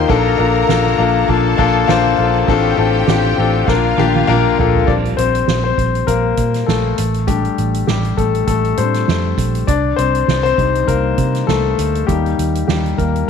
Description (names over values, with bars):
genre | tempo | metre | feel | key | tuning
piano-driven pop | 100 BPM | 4/4 | swing 56% on 16ths | Bb major | A4 = 440 Hz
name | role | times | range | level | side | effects
rich symphonic violin section | second line | 0.0-4.9 s | F4 to Bb5 | -22 LUFS | right 1 dB | none
warm concert grand piano | accompaniment | 0.0-13.3 s | A2 to D5 | -15 LUFS | left 9 dB | none
vintage muted fingered electric bass | bass | 0.0-13.2 s | A1 to C3 | -18 LUFS | right 2 dB | none
soft-mallet drum kit | drums | 0.1-13.3 s | crash cymbal, hi-hat, kick drum, ride cymbal, snare drum, toms | -21 LUFS | right 6 dB | none
room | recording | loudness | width
moderate echo chamber reverb, RT60 1.4 s, small room reverb | 1960s-style stereo with parts hard left and right | -13 LUFS | side -6 dB against mid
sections
0.0-4.9 A section; 4.9-13.3 B section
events
drum fill 3.7-4.9; grand piano solo 4.9-13.3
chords
0.1 Bbmaj7; 2.5 Dm7/A; 3.7 Bb; 4.9 Bb5; 7.0 F6/A (rootless); 9.7 Cm; 12.1 Eb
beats
| 0.10 0.69 1.29 1.89 | 2.49 3.08 3.68 4.28 | 4.88 5.48 6.08 6.68 | 7.28 7.88 8.48 9.08 | 9.68 10.28 10.88 11.48 | 12.08 12.68 13.28